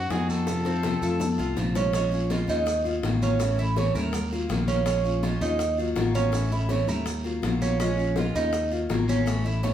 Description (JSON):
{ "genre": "latin, Cuban son and guajira", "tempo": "164 BPM", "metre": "4/4", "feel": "straight", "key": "Bb minor", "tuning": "A4 = 440 Hz", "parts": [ { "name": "brilliant trumpet", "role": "melody", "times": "0.0-1.5 s", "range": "Gb4 to A4", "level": "-32 LUFS", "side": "left 1 dB", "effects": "none" }, { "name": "picked steel-string acoustic guitar", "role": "accompaniment", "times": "0.0-9.7 s", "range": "C3 to Gb4", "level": "-30 LUFS", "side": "left 4 dB", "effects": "none" }, { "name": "Cuban tres", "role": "arpeggios", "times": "0.0-9.7 s", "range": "C4 to C#5", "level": "-28 LUFS", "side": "right 5 dB", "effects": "none" }, { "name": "modern bright picked electric bass", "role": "bass", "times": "0.0-9.7 s", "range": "A1 to F2", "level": "-27 LUFS", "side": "equal", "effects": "none" }, { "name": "bongos", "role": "percussion", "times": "0.1-9.7 s", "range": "none", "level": "-36 LUFS", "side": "left 3 dB", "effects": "none" }, { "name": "congas", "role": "percussion", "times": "0.1-9.7 s", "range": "none", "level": "-32 LUFS", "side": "left 4 dB", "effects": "none" }, { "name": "guiro", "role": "percussion", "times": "0.1-9.7 s", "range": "none", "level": "-43 LUFS", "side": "right 3 dB", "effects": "none" }, { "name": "maracas", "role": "percussion", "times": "0.1-9.7 s", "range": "none", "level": "-43 LUFS", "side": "right 3 dB", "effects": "none" } ], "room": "moderate large studio reverb, RT60 0.9 s", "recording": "band playing live in one room", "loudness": "-23 LUFS", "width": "side -10 dB against mid", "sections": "0.0-1.9 A section; 1.9-9.7 B section", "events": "drum fill 0.5-1.9", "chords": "0.5 F; 1.9 Bbm7; 2.7 Ebmadd9; 3.4 A; 4.1 Ebmadd9; 4.9 Bbm7; 5.6 Ebmadd9; 6.3 A; 7.1 Ebmadd9; 7.8 Bbm7; 8.5 Ebmadd9", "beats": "0.11 | 0.48 0.84 1.21 1.57 | 1.94 2.31 2.67 3.04 | 3.40 3.77 4.14 4.50 | 4.87 5.24 5.60 5.97 | 6.34 6.70 7.07 7.43 | 7.80 8.17 8.54 8.90 | 9.27 9.64" }